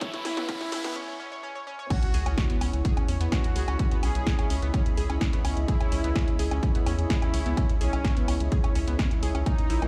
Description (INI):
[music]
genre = melodic techno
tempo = 127 BPM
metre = 4/4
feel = straight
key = C# dorian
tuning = A4 = 440 Hz
[part]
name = soft supersaw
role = melody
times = 0.0-9.9 s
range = C#4 to G#4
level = -39 LUFS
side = equal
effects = sidechain pumping, tape echo
[part]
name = deep dark ambient pad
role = sustained chords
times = 0.0-9.9 s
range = A#3 to E5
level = -44 LUFS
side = equal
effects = chorus, built-in reverb, sidechain pumping
[part]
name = analog pluck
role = arpeggios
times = 0.0-9.9 s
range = A#3 to C#5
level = -38 LUFS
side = equal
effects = chorus, sidechain pumping, digital delay
[part]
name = electronic kick drum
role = drums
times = 0.0-9.6 s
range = none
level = -27 LUFS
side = equal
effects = overdrive
[part]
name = punchy analog drum machine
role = drums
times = 0.0-9.9 s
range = crash cymbal, hi-hat, snare drum, toms, woodblock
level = -37 LUFS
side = equal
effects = high-pass filter on hats, high-pass filter on toms, high-pass filter on cymbals, high-pass filter on perc, high-pass filter on snare, high-pass filter on room
[part]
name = riser and sub drop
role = sound effects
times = 0.0-3.8 s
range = none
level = -39 LUFS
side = equal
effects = none
[part]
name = airy breathy pad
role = texture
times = 0.0-9.9 s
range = C#4 to B5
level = -40 LUFS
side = equal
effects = chorus, sidechain pumping
[part]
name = round analog bass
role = bass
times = 0.2-9.9 s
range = A#1 to E2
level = -29 LUFS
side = equal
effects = sidechain pumping, high-pass filter
[sound]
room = little or no reverb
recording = played on a big sound system in a bare room, large studio reverb, high-pass filter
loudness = -26 LUFS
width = mono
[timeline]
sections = 0.0-1.9 A section; 1.9-9.9 B section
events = build-up 0.0-1.9; drum fill 0.0-1.0; riser 0.0-1.0; break 1.0-1.9; drop 1.9-9.9; impact 1.9-3.8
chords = 0.0 C#m7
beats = | 0.01 0.49 0.96 1.43 | 1.90 2.38 2.85 3.32 | 3.79 4.27 4.74 5.21 | 5.68 6.16 6.63 7.10 | 7.57 8.04 8.52 8.99 | 9.46